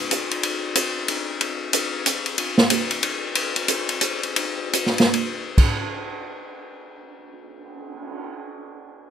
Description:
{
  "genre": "jazz",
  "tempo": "129-185 BPM",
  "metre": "3/4",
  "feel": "swing 63% on 8ths",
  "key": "none",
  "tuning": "none",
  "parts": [
    { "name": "open jazz drum kit", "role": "drums", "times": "0.1-8.3 s", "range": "crash cymbal, cymbal swell, hi-hat, kick drum, ride cymbal, snare drum", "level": "-20 LUFS", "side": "equal", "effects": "none" }
  ],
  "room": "little or no reverb",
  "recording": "close, detailed microphones",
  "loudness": "-20 LUFS",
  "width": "side -8 dB against mid",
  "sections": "0.0-1.4 A section; 1.4-5.6 B section; 5.6-8.4 C section",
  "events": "slowing down 3.4-5.6",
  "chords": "none",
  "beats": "0.10 | 0.43 0.75 1.08 | 1.40 1.73 2.05 | 2.38 2.70 3.02 | 3.35 3.68 4.01 | 4.36 4.74 5.14 | 5.58 6.04 6.51 | 6.97 7.43 7.90"
}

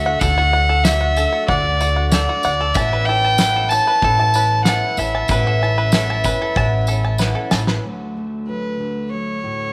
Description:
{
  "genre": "indie folk with a building arrangement",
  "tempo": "94 BPM",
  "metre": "4/4",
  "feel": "straight",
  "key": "D major",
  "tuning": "A4 = 435 Hz",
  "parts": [
    { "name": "dark fiddle", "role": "melody", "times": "0.0-9.7 s", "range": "B4 to A5", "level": "-21 LUFS", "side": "equal", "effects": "tape echo" },
    { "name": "picked twelve-string acoustic guitar", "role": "accompaniment", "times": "0.0-7.8 s", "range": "A2 to F#4", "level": "-29 LUFS", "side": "equal", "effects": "none" },
    { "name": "bluegrass banjo", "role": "arpeggios", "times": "0.0-7.8 s", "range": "F#4 to A5", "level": "-27 LUFS", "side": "equal", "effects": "none" },
    { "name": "upright bass", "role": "bass", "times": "0.0-7.8 s", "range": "A1 to D2", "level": "-23 LUFS", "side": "equal", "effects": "none" },
    { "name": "loose indie drum kit", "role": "drums", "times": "0.2-7.8 s", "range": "kick drum, snare drum", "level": "-22 LUFS", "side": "equal", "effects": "none" },
    { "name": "tambourine", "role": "percussion", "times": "0.2-7.7 s", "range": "none", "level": "-32 LUFS", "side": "equal", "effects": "none" },
    { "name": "fingerpicked steel-string acoustic guitar", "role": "accompaniment", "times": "7.8-9.7 s", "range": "D2 to F#4", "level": "-28 LUFS", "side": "equal", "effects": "none" }
  ],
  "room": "light reverb, small room ambience",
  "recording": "none",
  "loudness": "-18 LUFS",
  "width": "mono",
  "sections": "0.0-7.8 A section; 7.8-9.7 B section",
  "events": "drum fill 7.2-7.8",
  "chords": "0.0 D; 2.8 Aadd9; 7.8 D",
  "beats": "| 0.21 0.85 1.49 2.12 | 2.75 3.39 4.02 4.66 | 5.29 5.93 6.56 7.20 | 7.83 8.47 9.10"
}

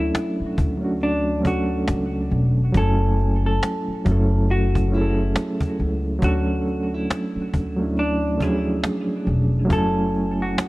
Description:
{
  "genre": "lo-fi hip hop",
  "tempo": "69 BPM",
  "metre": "4/4",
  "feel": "swing 60% on 16ths",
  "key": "unclear",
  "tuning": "A4 = 440 Hz",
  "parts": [
    { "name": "vintage hollow-body jazz guitar", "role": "melody", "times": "0.0-10.7 s", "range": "D4 to A4", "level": "-27 LUFS", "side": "left 1 dB", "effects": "low-pass filter, dub echo" },
    { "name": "overdriven reed electric piano", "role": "accompaniment", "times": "0.0-10.7 s", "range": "E#3 to G#5", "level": "-23 LUFS", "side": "right 1 dB", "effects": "fast tremolo, cassette tape, low-pass filter" },
    { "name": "upright bass", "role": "bass", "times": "0.0-10.5 s", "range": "E1 to D2", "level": "-22 LUFS", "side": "equal", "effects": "none" },
    { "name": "cajon", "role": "drums", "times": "0.1-10.7 s", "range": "none", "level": "-24 LUFS", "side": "equal", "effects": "none" }
  ],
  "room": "little or no reverb",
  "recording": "echo-heavy mix, cassette tape",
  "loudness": "-19 LUFS",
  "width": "side -19 dB against mid",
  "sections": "0.0-10.7 A section",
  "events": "none",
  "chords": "0.0 Dmaj7; 2.7 F#m9; 6.2 Dmaj7; 9.7 F#m9",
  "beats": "0.14 1.01 1.88 | 2.75 3.61 4.48 5.35 | 6.22 7.09 7.96 8.83 | 9.70 10.57"
}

